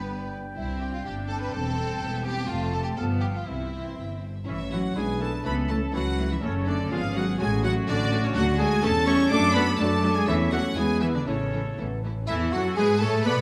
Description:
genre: quick classical-period movement for symphony orchestra.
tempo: 123 BPM.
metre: 2/4.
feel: straight.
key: C major, A major from 4.5 s.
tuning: A4 = 440 Hz.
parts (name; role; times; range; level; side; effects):
clear studio violin section; melody; 0.0-13.4 s; B4 to D6; -38 LUFS; equal; none.
clear clarinet; second line; 0.0-13.4 s; B3 to D5; -34 LUFS; equal; none.
clear studio violin section; second line; 0.0-13.4 s; B3 to B4; -39 LUFS; equal; none.
mellow cor anglais; second line; 0.0-13.4 s; E4 to A5; -37 LUFS; equal; none.
mellow silver concert flute; second line; 0.0-4.2, 12.3-13.4 s; E5 to B5; -40 LUFS; equal; none.
rich studio viola section; accompaniment; 0.0-13.4 s; E3 to D4; -36 LUFS; equal; none.
dark French horn section; sustained chords; 0.0-13.4 s; E3 to B4; -35 LUFS; equal; none.
rich studio double bass section; bass; 0.0-13.4 s; E1 to B2; -31 LUFS; equal; none.
warm studio cello section; bass; 0.0-13.4 s; C2 to D4; -32 LUFS; equal; none.
clear trumpet section; stabs; 4.5-13.4 s; A4 to D6; -35 LUFS; equal; none.
room: wet scoring stage reverb, RT60 1.7 s.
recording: none.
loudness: -26 LUFS.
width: mono.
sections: 0.0-4.5 A section; 4.5-12.3 B section; 12.3-13.4 B section.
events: none.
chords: 0.0 G; 0.6 C; 1.5 C/E; 2.5 F; 3.0 G7; 3.5 C; 4.5 A; 5.0 E7/B; 5.5 A/C#; 6.4 F#m; 6.9 C#7/G#; 7.4 F#m/A; 8.4 D; 8.8 A7/E; 9.3 D/F#; 10.3 A/E; 10.8 E; 11.3 A; 12.3 A5/E; 12.8 Amaj9/G#.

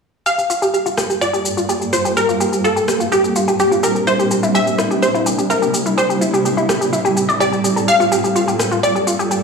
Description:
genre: progressive house.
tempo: 126 BPM.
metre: 4/4.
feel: straight.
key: G dorian.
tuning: A4 = 438 Hz.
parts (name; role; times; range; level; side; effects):
wide unison pluck; melody; 0.3-9.4 s; G4 to F5; -19 LUFS; equal; digital delay.
soft round pluck; second line; 0.3-9.4 s; G4 to F5; -25 LUFS; left 1 dB; ensemble chorus, digital delay.
shimmering ambient pad; sustained chords; 1.0-9.4 s; G2 to A4; -20 LUFS; right 1 dB; chorus, built-in reverb.
analog pluck; arpeggios; 0.3-9.4 s; E4 to D5; -19 LUFS; equal; chorus, vintage 12-bit sampler grit, digital delay.
electronic shaker and rim click; drums; 0.3-9.4 s; none; -24 LUFS; left 2 dB; overdrive, studio reverb.
room: moderate recital hall reverb, RT60 1.5 s, digital ambience.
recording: studio reverb.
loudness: -14 LUFS.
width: side -5 dB against mid.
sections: 0.3-9.4 A section.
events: filter sweep on synth arpeggio sound 0.3-9.4.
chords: 0.3 Gm7; 2.2 Bb6; 4.1 C7; 6.0 Am7; 7.9 Gm7.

